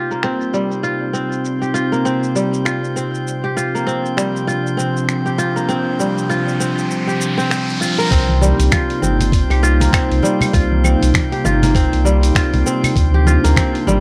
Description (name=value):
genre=organic downtempo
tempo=99 BPM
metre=4/4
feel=swing 58% on 16ths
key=C minor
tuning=A4 = 439 Hz
part: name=warbly tape-like pad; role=sustained chords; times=0.0-14.0 s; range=C3 to Eb4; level=-24 LUFS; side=equal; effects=chorus, built-in reverb, sidechain pumping
part: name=kora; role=arpeggios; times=0.0-14.0 s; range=G3 to C5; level=-22 LUFS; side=equal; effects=low-pass filter, tape echo
part: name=drifting glass-harmonics texture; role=texture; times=0.1-14.0 s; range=C4 to C5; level=-30 LUFS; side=equal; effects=chorus, built-in reverb
part: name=dusty soul sampler-style drum kit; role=drums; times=0.1-14.0 s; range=cabasa, claves, finger snaps, hi-hat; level=-26 LUFS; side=equal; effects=low-pass filter on hats, low-pass filter on perc, low-pass filter on snare
part: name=riser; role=sound effects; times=5.0-8.1 s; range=none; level=-29 LUFS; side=equal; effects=none
part: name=warm sub bass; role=bass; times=8.1-14.0 s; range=G1 to D2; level=-17 LUFS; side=equal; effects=sidechain pumping
part: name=electronic kick drum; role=drums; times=8.1-13.7 s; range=none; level=-20 LUFS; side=equal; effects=none
part: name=congas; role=percussion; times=8.3-14.0 s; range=none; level=-25 LUFS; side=equal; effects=none
room=digital ambience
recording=dry, gritty hardware recording, cassette tape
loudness=-17 LUFS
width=mono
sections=0.0-8.1 A section; 8.1-14.0 B section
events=filter sweep on ambient pad 0.0-8.1; riser 5.0-8.1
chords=0.0 Cm7; 3.3 C9sus4; 8.1 Cm7; 13.0 Dm7b5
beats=0.23 | 0.84 1.45 2.05 2.66 | 3.26 3.87 4.47 5.08 | 5.69 6.29 6.90 7.50 | 8.11 8.72 9.32 9.93 | 10.54 11.14 11.75 12.35 | 12.96 13.57